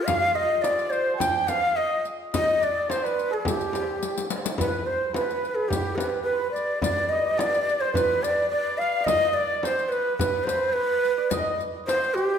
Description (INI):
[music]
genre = Persian modal ensemble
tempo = 107 BPM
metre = 4/4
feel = straight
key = G dastgah homayun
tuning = A4 = 440 Hz
[part]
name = breathy ney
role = melody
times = 0.0-12.4 s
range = G4 to G5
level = -24 LUFS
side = right 1 dB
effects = none
[part]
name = mellow trumpet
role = second line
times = 0.0-12.4 s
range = G4 to G5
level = -32 LUFS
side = left 4 dB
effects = none
[part]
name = santur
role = second line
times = 0.0-12.4 s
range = F4 to Ab5+45c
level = -32 LUFS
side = right 4 dB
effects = none
[part]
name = frame drum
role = percussion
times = 0.1-12.0 s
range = none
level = -34 LUFS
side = left 3 dB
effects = none
[part]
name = riq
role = percussion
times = 0.1-12.2 s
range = none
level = -35 LUFS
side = left 7 dB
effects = none
[part]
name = tombak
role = percussion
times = 0.1-12.2 s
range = none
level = -35 LUFS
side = right 2 dB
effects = none
[sound]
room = wet recital hall reverb, RT60 1.4 s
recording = none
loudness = -22 LUFS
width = side -8 dB against mid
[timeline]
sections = 0.0-12.4 A section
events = drum fill 4.0-4.6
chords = none